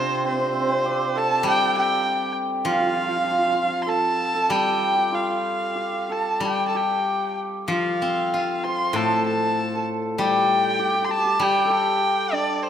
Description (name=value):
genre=chinese traditional, Chinese chamber ensemble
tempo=98 BPM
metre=4/4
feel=rubato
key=unclear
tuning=A4 = 440 Hz
part: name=rich erhu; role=melody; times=0.0-12.7 s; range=C5 to C6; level=-24 LUFS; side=equal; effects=none
part: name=hammered dulcimer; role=second line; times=0.0-12.7 s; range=C4 to C5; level=-24 LUFS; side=right 3 dB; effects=none
part: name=steel-string zither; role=accompaniment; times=0.0-12.7 s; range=A2 to F4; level=-26 LUFS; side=left 5 dB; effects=none
room=wet recital hall reverb, RT60 1.7 s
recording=none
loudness=-20 LUFS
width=side -9 dB against mid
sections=0.0-12.7 A section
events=none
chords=none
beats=0.25 0.86 | 1.46 2.07 2.68 3.29 | 3.90 4.51 5.14 5.78 | 6.42 7.06 7.69 8.33 | 8.96 9.58 10.20 10.80 | 11.41 12.02 12.63